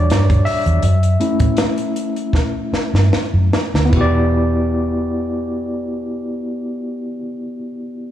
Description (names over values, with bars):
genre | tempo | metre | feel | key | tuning
lush 1970s-style soul | 73-83 BPM | 4/4 | swing 54% on 16ths | E dorian | A4 = 439 Hz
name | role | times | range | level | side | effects
overdriven tine electric piano | accompaniment | 0.0-8.1 s | G3 to E5 | -20 LUFS | left 1 dB | fast tremolo, slapback echo
vintage muted fingered electric bass | bass | 0.0-7.1 s | E1 to A2 | -16 LUFS | right 1 dB | none
compact cocktail drum kit | drums | 0.1-4.1 s | hi-hat, kick drum, snare drum, splash cymbal | -19 LUFS | equal | none
room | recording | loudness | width
light reverb, small room ambience | live gig heard through the venue's PA, club reverb | -15 LUFS | side -11 dB against mid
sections
0.0-3.9 A section; 3.9-7.2 B section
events
slowing down 0.0-3.9; tine electric piano solo 0.0-3.9; drum fill 2.3-3.9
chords
0.0 Em7; 0.8 F#m7; 3.9 Em7